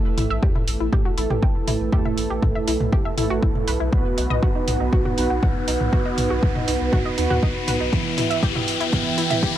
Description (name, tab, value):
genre	melodic techno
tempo	120 BPM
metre	4/4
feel	straight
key	unclear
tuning	A4 = 441 Hz
part	dark analog pad	sustained chords	0.3-9.6 s	D#4 to A5	-29 LUFS	equal	chorus, phaser, sidechain pumping
part	analog synth brass	stabs	0.0-9.6 s	E3 to B4	-26 LUFS	right 4 dB	chorus, vintage 12-bit sampler grit, sidechain pumping, digital delay
part	riser	sound effects	0.1-9.6 s	none	-30 LUFS	left 4 dB	none
part	analog pluck	arpeggios	0.2-9.6 s	D#4 to G5	-28 LUFS	equal	chorus, sidechain pumping, digital delay
part	round analog bass	bass	0.2-9.5 s	E1 to E2	-27 LUFS	equal	sidechain pumping
part	techno drum kit	drums	0.2-9.5 s	hi-hat, toms	-28 LUFS	right 1 dB	sidechain pumping on hats, sidechain pumping on toms
part	electronic kick drum	drums	0.4-9.5 s	none	-21 LUFS	equal	none
room	little or no reverb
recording	dark, warm production, high-pass filter, faint mains hum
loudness	-19 LUFS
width	side -12 dB against mid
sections	0.0-9.6 A section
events	build-up 0.0-9.6; filter sweep 0.0-9.6; riser 0.1-9.6; drum fill 7.9-9.6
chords	0.0 Asus2; 3.9 B; 7.9 Em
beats	0.43 0.93 1.43 | 1.93 2.43 2.93 3.43 | 3.93 4.43 4.93 5.43 | 5.93 6.43 6.93 7.43 | 7.93 8.43 8.93 9.43